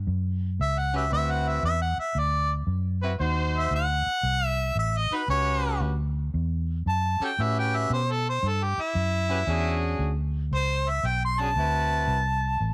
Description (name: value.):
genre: blues.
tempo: 115 BPM.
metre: 4/4.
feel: swing 66% on 8ths.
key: A mixolydian.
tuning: A4 = 439 Hz.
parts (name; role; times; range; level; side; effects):
vintage muted fingered electric bass; bass; 0.0-12.7 s; A1 to B2; -29 LUFS; equal; none.
bright harmonica; melody; 0.6-12.7 s; E4 to C6; -29 LUFS; equal; overdrive.
clear horn section; stabs; 0.9-12.2 s; C4 to B#4; -34 LUFS; equal; none.
room: little or no reverb.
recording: none.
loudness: -26 LUFS.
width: mono.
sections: 0.0-12.7 A section.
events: none.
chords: 0.0 A6 (rootless); 1.1 D13; 3.2 D#dim7; 5.3 A13; 9.5 E13; 11.6 D13.